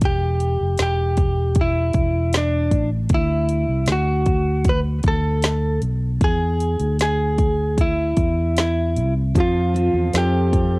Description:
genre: pop ballad.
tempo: 77 BPM.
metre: 4/4.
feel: straight.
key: unclear.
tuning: A4 = 444 Hz.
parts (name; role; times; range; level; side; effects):
fingered electric bass; bass; 0.0-10.8 s; E1 to F2; -20 LUFS; equal; none.
deep house drum kit; drums; 0.0-10.7 s; hi-hat, kick drum, snare drum; -20 LUFS; equal; cassette tape.
direct-recorded clean electric guitar; melody; 0.1-10.8 s; D4 to B4; -22 LUFS; equal; cassette tape, plate reverb.
fingerpicked steel-string acoustic guitar; arpeggios; 9.3-10.8 s; F3 to A4; -27 LUFS; left 3 dB; cassette tape, plate reverb.
clear upright piano; accompaniment; 9.4-10.8 s; F3 to A4; -25 LUFS; right 3 dB; cassette tape, plate reverb.
room: light reverb.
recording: home recording on cassette.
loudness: -17 LUFS.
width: side -26 dB against mid.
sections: 0.0-10.8 A section.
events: none.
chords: 0.0 Em; 3.1 D; 6.2 E; 9.4 F.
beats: | 0.02 0.79 1.57 2.34 | 3.11 3.88 4.66 5.44 | 6.21 6.99 7.78 8.57 | 9.35 10.13.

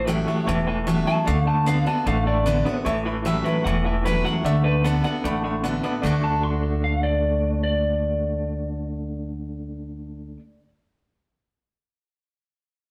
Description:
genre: rockabilly.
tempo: 151 BPM.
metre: 4/4.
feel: straight.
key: D major.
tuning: A4 = 441 Hz.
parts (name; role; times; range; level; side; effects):
electric guitar through a small old amp; melody; 0.0-10.7 s; G4 to C6; -29 LUFS; equal; none.
picked steel-string acoustic guitar; accompaniment; 0.0-10.4 s; E2 to F#4; -31 LUFS; equal; none.
electric guitar through a small old amp; riff; 0.0-10.4 s; A2 to F#4; -29 LUFS; equal; tremolo.
upright bass; bass; 0.0-10.3 s; E1 to D2; -28 LUFS; equal; none.
bright upright piano; accompaniment; 0.1-10.4 s; C#5 to B5; -36 LUFS; equal; none.
room: moderate stone room reverb, RT60 1.0 s.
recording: band playing live in one room.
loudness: -23 LUFS.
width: mono.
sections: 0.0-2.9 A section; 2.9-6.0 B section; 6.0-9.2 C section.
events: none.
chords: 0.0 A7; 1.3 D; 2.9 A7; 4.4 D.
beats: 0.08 0.47 0.87 | 1.27 1.67 2.06 2.46 | 2.86 3.25 3.65 4.05 | 4.45 4.84 5.24 5.64 | 6.04 6.43 6.83 7.23 | 7.63 8.02 8.42 8.82.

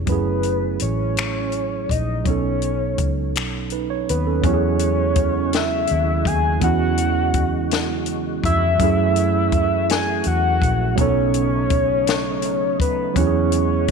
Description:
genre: slow six-eight R&B.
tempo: 55 BPM (dotted quarters).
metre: 6/8.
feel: straight.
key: E major.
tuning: A4 = 440 Hz.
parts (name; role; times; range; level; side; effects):
tine electric piano; accompaniment; 0.0-13.9 s; E3 to C#5; -23 LUFS; right 14 dB; medium stereo tremolo.
vintage muted fingered electric bass; bass; 0.0-13.9 s; F#1 to F#2; -23 LUFS; left 1 dB; none.
soft octave-layered synth lead; melody; 0.1-13.9 s; B4 to G#5; -22 LUFS; left 2 dB; chorus, phaser.
compact cocktail drum kit; drums; 0.1-13.9 s; finger snaps, hi-hat, kick drum, snare drum; -24 LUFS; left 4 dB; none.
percussive tonewheel organ; sustained chords; 4.4-13.9 s; C#3 to F#4; -31 LUFS; left 13 dB; overdrive, chorus vibrato, slow rotary speaker.
room: light reverb, small room ambience.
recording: 1960s-style stereo with parts hard left and right.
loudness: -17 LUFS.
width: side -5 dB against mid.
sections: 0.0-4.4 A section; 4.4-13.9 B section.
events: kick muted 3.3-4.4.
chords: 0.1 F#m7; 2.3 B9; 4.4 E69; 8.8 F#m7; 11.0 B9; 13.2 E69.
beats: | 0.07 1.16 | 2.25 3.34 | 4.43 5.53 | 6.62 7.71 | 8.80 9.89 | 10.98 12.07 | 13.16.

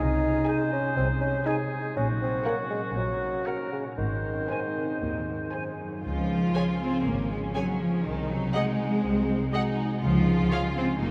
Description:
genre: cinematic, playful, whimsical film cue.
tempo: 120 BPM.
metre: 4/4.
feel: straight.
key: Db major.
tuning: A4 = 440 Hz.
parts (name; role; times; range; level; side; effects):
clear oboe; second line; 0.0-5.8 s; Gb4 to C5; -38 LUFS; equal; none.
mellow bassoon; accompaniment; 0.0-5.5 s; Db3 to Eb4; -33 LUFS; equal; none.
concert harp; arpeggios; 0.0-11.1 s; Gb2 to Ab4; -35 LUFS; equal; none.
rich studio cello section; bass; 0.0-11.1 s; Gb2 to C4; -31 LUFS; equal; none.
rich studio double bass section; bass; 0.0-11.1 s; Gb1 to Eb2; -35 LUFS; equal; none.
rich studio violin section; melody; 0.5-10.6 s; F5 to Ab5; -43 LUFS; equal; none.
bright concert flute; second line; 0.5-5.6 s; Gb5 to Ab5; -47 LUFS; equal; none.
mellow clarinet; second line; 0.5-5.7 s; Ab4 to Db5; -46 LUFS; equal; none.
rich studio violin section; second line; 0.5-11.1 s; C4 to Eb5; -39 LUFS; equal; none.
rich studio viola section; accompaniment; 0.5-10.6 s; Ab4 to Eb5; -41 LUFS; equal; none.
room: wet huge ambient reverb, RT60 7.4 s.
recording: in a vast, echoing space.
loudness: -27 LUFS.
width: mono.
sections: 0.0-6.0 A section; 6.0-11.1 B section.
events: none.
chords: 0.0 Ab/C; 2.0 Gb/Bb; 4.0 Ab; 6.0 Db; 8.1 Ab7/C; 10.0 Db.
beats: 0.48 0.97 1.47 | 1.96 2.46 2.96 3.46 | 3.98 4.50 5.02 5.53 | 6.05 6.56 7.06 7.55 | 8.05 8.54 9.03 9.52 | 10.01 10.51 11.01.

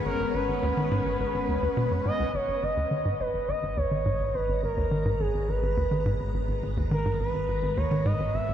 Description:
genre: ambient, sequencer-driven space music.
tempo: 105 BPM.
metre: 4/4.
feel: straight.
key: G# minor.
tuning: A4 = 438 Hz.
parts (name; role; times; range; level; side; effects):
expressive portamento lead; melody; 0.0-8.5 s; G#4 to E5; -29 LUFS; equal; chorus, tape echo.
phased string machine; sustained chords; 0.0-8.5 s; G#3 to A#5; -35 LUFS; equal; ensemble chorus, phaser.
analog drone; bass; 0.0-8.5 s; G#1; -33 LUFS; equal; chorus.
pulsing gated texture; texture; 0.0-2.4 s; F#5; -44 LUFS; right 1 dB; chorus, built-in reverb.
tight sequencer bass; riff; 0.1-8.5 s; G#1 to D#3; -29 LUFS; equal; tape echo.
room: moderate huge ambient reverb, RT60 7.8 s.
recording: none.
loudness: -25 LUFS.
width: side -10 dB against mid.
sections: 0.0-2.3 A section; 2.3-8.5 B section.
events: fade-in on string machine 2.3-8.5.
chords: 0.0 G#m; 2.3 G#madd9.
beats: | 0.06 0.63 1.20 1.77 | 2.34 2.91 3.48 4.06 | 4.63 5.20 5.77 6.34 | 6.91 7.48 8.06.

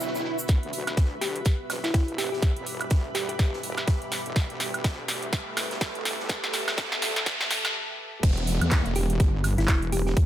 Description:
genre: bass house.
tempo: 124 BPM.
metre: 4/4.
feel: swing 58% on 16ths.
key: E minor.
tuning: A4 = 440 Hz.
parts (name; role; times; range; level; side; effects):
deep dark ambient pad; sustained chords; 0.0-10.3 s; G3 to D5; -41 LUFS; right 2 dB; chorus, built-in reverb, sidechain pumping.
crisp fusion drum kit; drums; 0.0-10.3 s; hi-hat, snare drum; -40 LUFS; right 2 dB; none.
tube shaker; percussion; 0.0-0.5 s; none; -34 LUFS; equal; none.
swell, riser and downlifter; sound effects; 0.0-10.3 s; none; -35 LUFS; right 1 dB; none.
granular cloud pad; texture; 0.0-7.7 s; F#4 to B5; -36 LUFS; equal; built-in reverb, sidechain pumping.
wobble bass; bass; 0.5-10.3 s; E1 to E2; -30 LUFS; equal; chorus, tube saturation, sidechain pumping, high-pass filter.
big-room dance drum kit; drums; 0.5-10.3 s; crash cymbal, handclaps, hi-hat, snare drum, woodblock; -30 LUFS; right 1 dB; high-pass filter on perc, high-pass filter on snare, high-pass filter on hats, high-pass filter on cymbals.
electronic kick drum; drums; 0.5-10.3 s; none; -22 LUFS; equal; none.
thumb-piano-like synth pluck; melody; 1.2-3.4, 9.0-10.1 s; E4 to G4; -32 LUFS; equal; chorus, tape echo.
room: light reverb, digital ambience.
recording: high-pass filter.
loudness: -24 LUFS.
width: side -12 dB against mid.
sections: 0.5-8.2 A section; 8.2-10.3 B section.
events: swell 0.0-0.5; build-up 0.5-8.2; drum fill 0.5-7.7; riser 0.5-7.7; filter sweep on ambient pad 0.5-8.2; filter sweep 0.5-8.2; break 7.7-8.2; drop 8.2-10.3.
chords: 0.5 Em.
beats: 0.01 | 0.49 0.97 1.46 1.94 | 2.42 2.91 3.39 3.88 | 4.36 4.84 5.33 5.81 | 6.30 6.78 7.26 7.75 | 8.23 8.71 9.20 9.68 | 10.17.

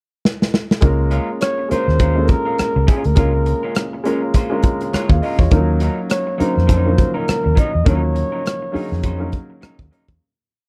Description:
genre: lush 1970s-style soul.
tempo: 102 BPM.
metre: 4/4.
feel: swing 58% on 16ths.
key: Db major.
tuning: A4 = 437 Hz.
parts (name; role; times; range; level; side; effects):
modern studio drum kit; drums; 0.3-10.2 s; hi-hat, kick drum, rim click, snare drum; -18 LUFS; equal; none.
warm grand piano; accompaniment; 0.8-10.2 s; F3 to F5; -24 LUFS; equal; none.
vintage muted fingered electric bass; bass; 0.8-10.2 s; Db2 to F2; -20 LUFS; equal; none.
electric guitar through a small old amp; riff; 1.1-10.1 s; Gb3 to C5; -31 LUFS; equal; none.
breathy flugelhorn; melody; 1.4-9.6 s; Ab4 to Eb5; -25 LUFS; equal; none.
room: small room ambience.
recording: none.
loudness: -17 LUFS.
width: mono.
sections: 0.0-0.8 pickup bar; 0.8-10.2 verse.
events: drum fill 0.2-0.8; fade-out 7.9-10.2.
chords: 0.0 N.C.; 0.8 Db6; 5.5 Ebm7.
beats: 0.23 | 0.82 1.41 2.00 2.58 | 3.17 3.75 4.34 4.93 | 5.51 6.10 6.69 7.28 | 7.86 8.45 9.04 9.62.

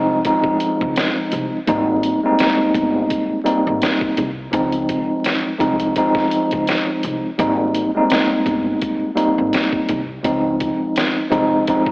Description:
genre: hip hop, boom-bap hip-hop.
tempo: 84 BPM.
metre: 4/4.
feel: swing 55% on 16ths.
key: Ab major.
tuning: A4 = 440 Hz.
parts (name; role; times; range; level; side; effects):
mellow tine electric piano; accompaniment; 0.0-11.9 s; Db2 to Eb4; -17 LUFS; equal; medium stereo tremolo, high-pass filter, low-pass filter, cassette tape.
upright bass; bass; 0.0-11.6 s; G1 to Db2; -25 LUFS; equal; none.
trip hop sampler-style drum kit; drums; 0.2-11.9 s; hi-hat, kick drum, snare drum; -23 LUFS; equal; cassette tape.
room: moderate lush hall reverb, RT60 2.7 s.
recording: home recording on cassette, vinyl crackle, AM radio sound.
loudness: -16 LUFS.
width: side -28 dB against mid.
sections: 0.0-11.9 A section.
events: none.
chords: 0.0 Dbmaj7; 1.7 Abmaj7; 4.5 Dbmaj7; 7.4 Abmaj7; 10.2 Dbmaj7.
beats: 0.25 0.96 | 1.68 2.39 3.11 3.82 | 4.54 5.25 5.96 6.68 | 7.39 8.11 8.82 9.54 | 10.25 10.96 11.68.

